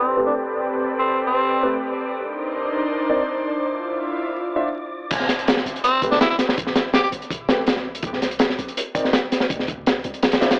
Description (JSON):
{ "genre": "drum and bass, jungle", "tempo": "164 BPM", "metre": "4/4", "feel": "straight", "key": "A minor", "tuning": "A4 = 444 Hz", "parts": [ { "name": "growling tenor saxophone", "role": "melody", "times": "0.0-1.8, 5.8-7.1 s", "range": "C4 to G4", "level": "-26 LUFS", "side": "equal", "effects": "dub echo" }, { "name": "airy breathy pad", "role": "sustained chords", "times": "0.0-5.1 s", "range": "C4 to C5", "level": "-26 LUFS", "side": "equal", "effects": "chorus" }, { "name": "wind-like tuned noise texture", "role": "texture", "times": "0.0-5.1 s", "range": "D5 to D6", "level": "-36 LUFS", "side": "equal", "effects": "built-in reverb" }, { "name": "dark concert grand piano", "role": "stabs", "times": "0.2-10.5 s", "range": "A3 to E5", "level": "-29 LUFS", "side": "equal", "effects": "low-pass filter, dub echo" }, { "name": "warm 808-style bass", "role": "bass", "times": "5.1-10.6 s", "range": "E1 to D2", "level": "-40 LUFS", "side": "equal", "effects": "none" }, { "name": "crunchy breakbeat drum kit", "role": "drums", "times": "5.1-10.6 s", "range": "crash cymbal, hi-hat, kick drum, snare drum", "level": "-22 LUFS", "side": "equal", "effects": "none" } ], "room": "light reverb, small room ambience", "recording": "dry, gritty hardware recording, vinyl crackle, low-pass filter, AM radio sound", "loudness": "-22 LUFS", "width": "mono", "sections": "0.0-5.1 A section; 5.1-10.6 B section", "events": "drop 5.1-10.6", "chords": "0.0 Am9; 2.2 Cm9; 3.6 Dm9; 5.1 A7(no3); 8.0 C7(no3); 9.5 D7(no3)" }